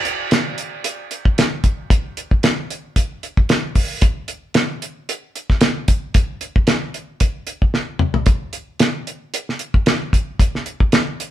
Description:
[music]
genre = jazz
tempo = 113 BPM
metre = 4/4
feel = swing 55% on 16ths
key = none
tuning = none
[part]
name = damped 70s drum kit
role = drums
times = 0.1-11.3 s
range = hi-hat, kick drum, snare drum, toms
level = -16 LUFS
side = equal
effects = none
[sound]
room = moderate studio reverb, RT60 0.8 s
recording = band playing live in one room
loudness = -17 LUFS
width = side -13 dB against mid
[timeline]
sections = 0.0-11.3 A section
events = drum fill 7.7-8.3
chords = none

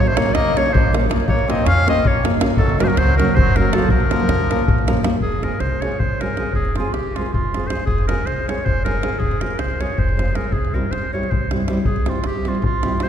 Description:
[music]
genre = balkan folk, Balkan wedding band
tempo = 317 BPM (eighths)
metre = 7/8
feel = straight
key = Bb harmonic minor, F harmonic minor from 5.2 s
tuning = A4 = 440 Hz
[part]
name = bright clarinet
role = melody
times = 0.0-13.1 s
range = F4 to F5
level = -22 LUFS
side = equal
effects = none
[part]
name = trombone with straight mute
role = second line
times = 0.0-5.0 s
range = F3 to Db4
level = -27 LUFS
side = left 4 dB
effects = none
[part]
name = upright bass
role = bass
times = 0.0-12.9 s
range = F1 to G2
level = -22 LUFS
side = equal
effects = none
[part]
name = davul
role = percussion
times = 0.1-13.1 s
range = none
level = -21 LUFS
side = equal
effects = none
[part]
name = nylon-string guitar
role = accompaniment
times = 0.2-13.1 s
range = F3 to Bb4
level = -23 LUFS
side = right 1 dB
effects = none
[sound]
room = wet cathedral reverb, RT60 4.2 s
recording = recorded in a church or concert hall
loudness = -16 LUFS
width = side -9 dB against mid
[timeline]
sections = 0.0-5.2 A section; 5.2-13.1 B section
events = none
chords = 0.0 Bbm; 2.6 Gb; 3.9 Bbm; 5.2 Fm; 10.5 C

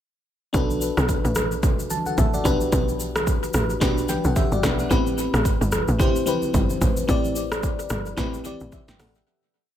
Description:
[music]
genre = amapiano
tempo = 110 BPM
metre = 4/4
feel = swing 58% on 16ths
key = A dorian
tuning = A4 = 439 Hz
[part]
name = bell-like FM electric piano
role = accompaniment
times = 0.5-9.4 s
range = B3 to A5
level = -25 LUFS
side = left 2 dB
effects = chorus, tremolo, tape echo
[part]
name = tight log drum bass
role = bass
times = 0.5-9.2 s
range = G1 to B1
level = -25 LUFS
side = equal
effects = none
[part]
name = deep house drum kit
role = drums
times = 0.5-9.3 s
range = hi-hat, kick drum, rim click, shaker, snare drum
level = -24 LUFS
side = equal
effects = overdrive, tape echo
[part]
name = congas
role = percussion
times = 0.7-9.1 s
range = none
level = -32 LUFS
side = right 1 dB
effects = tape echo
[sound]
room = light reverb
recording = echo-heavy mix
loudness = -20 LUFS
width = side -10 dB against mid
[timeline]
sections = 0.5-9.3 drop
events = drop 0.5-9.3; fade-out 7.1-9.3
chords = 0.5 Bm7; 2.5 Gmaj13; 4.9 Am9

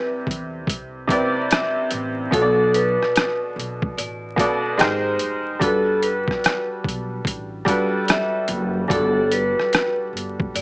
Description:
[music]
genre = lo-fi hip hop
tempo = 73 BPM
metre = 4/4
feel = swing 64% on 16ths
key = G major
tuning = A4 = 435 Hz
[part]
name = vibraphone with hard mallets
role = melody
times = 0.0-10.6 s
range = A4 to E5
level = -22 LUFS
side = equal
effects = low-pass filter
[part]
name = bright upright piano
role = accompaniment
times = 0.0-10.6 s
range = B2 to D5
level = -23 LUFS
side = equal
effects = low-pass filter
[part]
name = upright bass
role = bass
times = 0.3-10.6 s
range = F1 to E2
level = -29 LUFS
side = equal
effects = none
[part]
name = lo-fi sampler-style drum kit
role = drums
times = 0.3-10.6 s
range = hi-hat, kick drum, rim click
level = -21 LUFS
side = equal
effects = none
[sound]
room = wet studio reverb, RT60 0.6 s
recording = vinyl crackle, small speaker sound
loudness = -18 LUFS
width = side -26 dB against mid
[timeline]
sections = 0.0-10.6 A section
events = none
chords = 0.0 Cmaj9; 2.3 Bm7; 4.8 Abmaj7; 5.6 Gmaj7

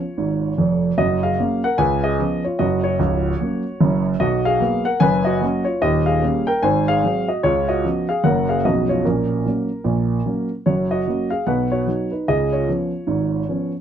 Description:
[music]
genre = jazz, stride piano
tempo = 149 BPM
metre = 4/4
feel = swing 62% on 8ths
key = F# major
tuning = A4 = 440 Hz
[part]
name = dark grand piano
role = solo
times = 0.0-13.7 s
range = C#1 to G#5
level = -17 LUFS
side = equal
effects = none
[sound]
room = light reverb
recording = dark, warm production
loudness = -17 LUFS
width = side -9 dB against mid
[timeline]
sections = 0.0-10.7 A section; 10.7-13.8 A section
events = none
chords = 0.0 C#; 1.0 F#; 1.8 C#7; 2.6 F#; 4.2 B5; 5.0 F#; 5.8 D#7; 6.6 G#7; 7.4 C#7; 8.2 F#; 8.6 C#7/B; 9.0 F#/A#; 10.7 F#; 11.5 B; 12.3 C#7

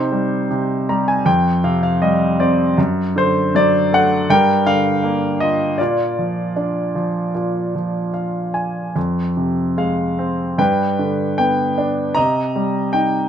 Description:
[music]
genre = classical, lyrical solo piano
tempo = 73-81 BPM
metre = 4/4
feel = rubato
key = F dorian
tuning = A4 = 440 Hz
[part]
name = clear concert grand piano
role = solo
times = 0.0-13.3 s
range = F2 to Bb5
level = -16 LUFS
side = equal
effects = none
[sound]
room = moderate studio reverb, RT60 0.6 s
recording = dark, warm production, nothing above 10.4 kHz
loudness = -16 LUFS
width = side -9 dB against mid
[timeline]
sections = 0.0-13.3 A section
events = grand piano fill 0.5-2.8, 7.7-9.0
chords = 0.0 Cm; 1.3 Fsus2; 2.8 D/F#; 4.3 Gm7; 5.8 Bb; 9.0 Fm; 10.6 G; 12.2 Cm7

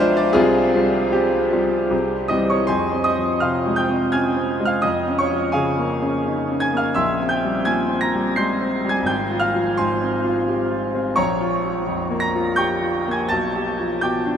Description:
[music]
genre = classical, romantic character piece for solo piano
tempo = 76-87 BPM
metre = 3/4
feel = rubato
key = F minor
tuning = A4 = 441 Hz
[part]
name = bright grand piano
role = solo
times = 0.0-14.4 s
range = Ab1 to C7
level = -18 LUFS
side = equal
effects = none
[sound]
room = wet huge ambient reverb, RT60 7.6 s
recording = in a vast, echoing space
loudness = -18 LUFS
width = side -8 dB against mid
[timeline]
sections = 0.0-2.7 A section; 2.7-14.4 B section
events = none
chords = 0.4 Csus4; 1.9 C; 2.7 Fm; 4.9 Bbm7/F; 7.0 C7/Bb; 9.1 Fm/Ab; 11.2 Bbm; 13.3 G7/B

